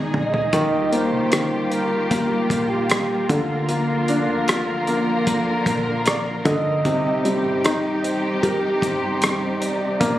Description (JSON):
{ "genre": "pop ballad", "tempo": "76 BPM", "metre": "4/4", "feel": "straight", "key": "unclear", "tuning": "A4 = 440 Hz", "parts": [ { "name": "warm baby grand piano", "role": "accompaniment", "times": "0.0-10.2 s", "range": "C3 to G4", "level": "-22 LUFS", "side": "equal", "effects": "none" }, { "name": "muted symphonic string section", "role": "sustained chords", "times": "0.0-10.2 s", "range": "Bb2 to Bb4", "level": "-25 LUFS", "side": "equal", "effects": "none" }, { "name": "vintage muted fingered electric bass", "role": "bass", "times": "0.0-10.2 s", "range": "F1 to Eb2", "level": "-34 LUFS", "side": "right 1 dB", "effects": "none" }, { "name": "breathy flugelhorn", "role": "melody", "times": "0.1-10.2 s", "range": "F4 to Eb5", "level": "-26 LUFS", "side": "right 1 dB", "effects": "digital delay" }, { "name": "damped 70s drum kit", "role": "drums", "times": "0.1-10.2 s", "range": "hi-hat, kick drum, rim click, toms", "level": "-22 LUFS", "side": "equal", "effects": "none" } ], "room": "light reverb, small room ambience", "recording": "recorded on a phone in the room, studio reverb", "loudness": "-18 LUFS", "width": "side -13 dB against mid", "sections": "0.0-10.2 A section", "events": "drum fill 0.0-0.5", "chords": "0.0 Absus2; 0.5 Ebadd9; 3.3 Bb/D; 6.9 Cm" }